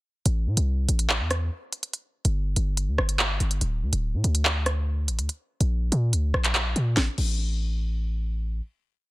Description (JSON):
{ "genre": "hip hop, drill", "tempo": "143 BPM", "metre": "4/4", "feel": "half-time", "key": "A phrygian", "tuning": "A4 = 441 Hz", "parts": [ { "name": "hard-hitting 808-style bass", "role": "bass", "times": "0.3-8.6 s", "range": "D1 to Bb2", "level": "-24 LUFS", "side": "equal", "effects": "none" }, { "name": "drill drum kit", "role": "drums", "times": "0.3-7.3 s", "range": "crash cymbal, handclaps, hi-hat, rim click, snare drum", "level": "-26 LUFS", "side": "equal", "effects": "vintage 12-bit sampler grit" } ], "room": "little or no reverb", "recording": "dense, heavily limited modern master", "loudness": "-23 LUFS", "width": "side -19 dB against mid", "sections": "0.3-7.0 hook; 7.0-9.1 final note", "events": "none", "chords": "none", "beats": "| 0.26 0.68 1.09 1.51 | 1.93 2.35 2.77 3.19 | 3.61 4.03 4.45 4.87 | 5.29 5.71 6.13 6.55 | 6.97 7.39 7.81 8.23" }